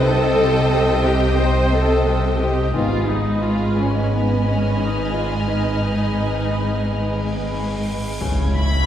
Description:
cinematic, suspense film score; 88 BPM; 4/4; straight; A4 = 440 Hz
rich symphonic violin section; melody; 0.0-8.9 s; G5 to B5; -31 LUFS; left 3 dB
rich symphonic violin section; second line; 0.0-8.9 s; B4 to B5; -26 LUFS; left 1 dB
rich symphonic viola section; accompaniment; 0.0-8.9 s; B3 to C5; -24 LUFS; right 1 dB
glass harmonica; sustained chords; 0.0-8.9 s; E4 to Eb6; -30 LUFS; right 1 dB
mellow French horn section; sustained chords; 0.0-7.1 s; B3 to Eb4; -30 LUFS; left 3 dB
Celtic harp; riff; 0.0-8.9 s; G#2 to C#4; -28 LUFS; left 5 dB
rich symphonic cello section; bass; 0.0-8.9 s; G#2 to C#3; -24 LUFS; right 1 dB
rich symphonic double bass section; bass; 0.0-8.9 s; G#1 to C#2; -25 LUFS; right 1 dB
saturated sub bass; drone; 0.0-8.9 s; G#1 to C#2; -25 LUFS; equal
rich symphonic violin section; texture; 2.7-8.9 s; B5 to G#6; -36 LUFS; left 2 dB
cymbal swell and impact; sound effects; 7.3-8.9 s; -30 LUFS; equal
wet scoring stage reverb, RT60 1.8 s; heard from further back in the room; -17 LUFS; side -10 dB against mid
0.0-8.2 A section
cymbal swell 7.3-8.2; impact 8.2-8.9
0.0 Cm; 2.8 G#m; 8.2 C#m
| 0.03 0.71 1.39 2.07 | 2.75 3.43 4.12 4.80 | 5.48 6.16 6.84 7.53 | 8.21

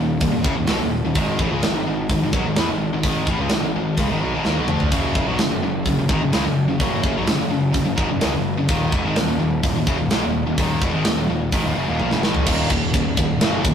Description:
heavy metal; 127 BPM; 4/4; straight; Eb minor; A4 = 440 Hz
heavy high-gain guitar; riff; 0.0-13.7 s; Eb2 to D4; -22 LUFS; equal; distortion
fuzz picked electric bass; bass; 0.0-13.7 s; Eb1 to Fb2; -24 LUFS; equal; overdrive
tight metal drum kit; drums; 0.2-13.7 s; crash cymbal, hi-hat, kick drum, ride cymbal, snare drum, toms; -22 LUFS; equal
light reverb; rough rehearsal-room recording, warm saturation; -18 LUFS; side -8 dB against mid
0.0-12.5 A section; 12.5-13.7 B section
drum fill 4.5-4.9, 12.0-12.5; half time 12.5-13.7
0.0 Ebm; 1.2 Ab5; 4.9 Gb5; 8.7 Ebm
0.22 0.69 | 1.16 1.63 2.10 2.57 | 3.04 3.52 3.99 4.46 | 4.93 5.40 5.87 6.34 | 6.81 7.29 7.76 8.23 | 8.70 9.17 9.64 10.11 | 10.59 11.06 11.53 12.00 | 12.47 12.94 13.42

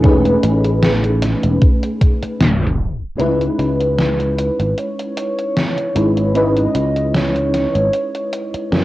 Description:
vaporwave; 76 BPM; 4/4; swing 54% on 16ths; C# minor; A4 = 441 Hz
mellow FM electric piano; accompaniment; 0.0-8.8 s; G#3 to B4; -19 LUFS; equal; phaser, ensemble chorus, cassette tape, tape echo
sustaining fretless electric bass; bass; 0.0-8.8 s; E1 to F#2; -18 LUFS; equal; wide subtle chorus
electronic kick drum; drums; 0.0-3.0 s; -14 LUFS; equal; vintage 12-bit sampler grit
gated 80s digital drum machine; drums; 0.0-8.8 s; hi-hat, snare drum; -20 LUFS; equal; gated reverb, gated reverb snare, vintage 12-bit sampler grit
warm velvety synth lead; melody; 3.1-8.8 s; B4 to D#5; -21 LUFS; equal; chorus, cassette tape, tape echo, plate reverb
moderate booth ambience, RT60 0.2 s; home recording on cassette, tape stop; -14 LUFS; side -16 dB against mid
0.0-3.2 A section; 3.2-8.8 B section
band accent 2.4-2.8; tape stop 2.4-3.2
0.0 Amaj9#11; 3.2 C#m9
| 0.04 0.83 1.62 2.41 | 3.20 3.98 4.78 5.56 | 6.35 7.14 7.93 8.72

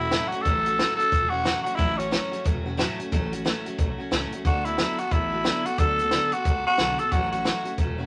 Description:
rockabilly; 180 BPM; 4/4; swing 61% on 8ths; A major; A4 = 439 Hz
growling tenor saxophone; melody; 0.0-2.4, 4.5-7.7 s; C#4 to A4; -26 LUFS; equal
picked steel-string acoustic guitar; accompaniment; 0.0-8.1 s; A2 to A4; -34 LUFS; equal
upright bass; bass; 0.0-8.1 s; E1 to D2; -35 LUFS; equal
compact cocktail drum kit; drums; 0.1-7.9 s; hi-hat, kick drum, snare drum; -28 LUFS; equal
moderate studio reverb, RT60 0.8 s; -25 LUFS; mono
0.0-8.1 A section
0.0 A6; 4.5 D6; 7.1 A6
0.12 | 0.46 0.79 1.12 1.46 | 1.79 2.12 2.46 2.79 | 3.12 3.46 3.79 4.12 | 4.45 4.79 5.12 5.45 | 5.79 6.12 6.45 6.78 | 7.12 7.45 7.78

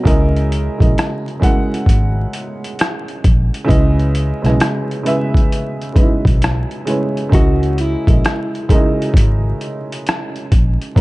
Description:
lo-fi hip hop; 66 BPM; 4/4; swing 66% on 16ths; C# dorian; A4 = 440 Hz
dark upright piano; accompaniment; 0.0-11.0 s; B2 to F#5; -19 LUFS; right 1 dB; cassette tape
vintage muted picked electric bass; bass; 0.1-11.0 s; G#1 to C#2; -16 LUFS; equal
boom bap sampler-style drum kit; drums; 0.1-11.0 s; hi-hat, kick drum, rim click; -15 LUFS; equal
hollow-body jazz guitar; melody; 7.3-9.4 s; E4 to F#4; -23 LUFS; left 1 dB; tape echo
light reverb; dark, warm production, vinyl crackle, nothing above 10.5 kHz; -13 LUFS; side -20 dB against mid
0.0-7.3 A section; 7.3-11.0 B section
0.1 C#m69; 3.7 C#m9; 7.3 C#m69
| 0.06 0.96 1.87 2.78 | 3.69 4.60 5.51 6.42 | 7.33 8.24 9.15 10.06 | 10.96

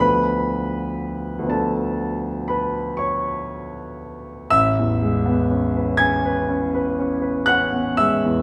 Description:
classical, impressionist solo piano; 40 BPM (dotted quarters); 9/8; rubato; A4 = 438 Hz
warm concert grand piano; solo; 0.0-8.4 s; A1 to G#6; -21 LUFS; equal
wet recital hall reverb, RT60 1.5 s; recorded in a church or concert hall; -21 LUFS; mono
0.0-4.5 A section; 4.5-8.4 B section
0.0 Dm6; 4.5 Amaj9
| 0.03 1.52 3.00 | 4.52 6.00 7.49

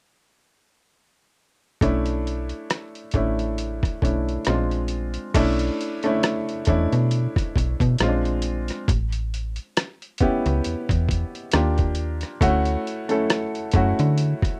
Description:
R&B, neo-soul; 68 BPM; 4/4; swing 55% on 16ths; B minor; A4 = 440 Hz
warm baby grand piano; accompaniment; 1.8-14.6 s; G#3 to A4; -27 LUFS; equal
slap-like FM bass; bass; 1.8-14.3 s; A1 to D3; -26 LUFS; equal
dusty soul sampler-style drum kit; drums; 1.8-14.6 s; crash cymbal, hi-hat, kick drum, rim click; -26 LUFS; equal; overdrive
little or no reverb; dry, close 1970s-style studio recording; -23 LUFS; mono
1.8-5.3 A section; 5.3-14.6 B section
1.8 Bm11; 4.5 A#9; 5.3 Bm11; 8.0 A#9; 8.9 A9; 11.5 D#maj9; 12.4 Dmaj9
| 1.82 2.70 3.58 4.46 | 5.34 6.23 7.11 7.99 | 8.87 9.76 10.64 11.52 | 12.40 13.29 14.17

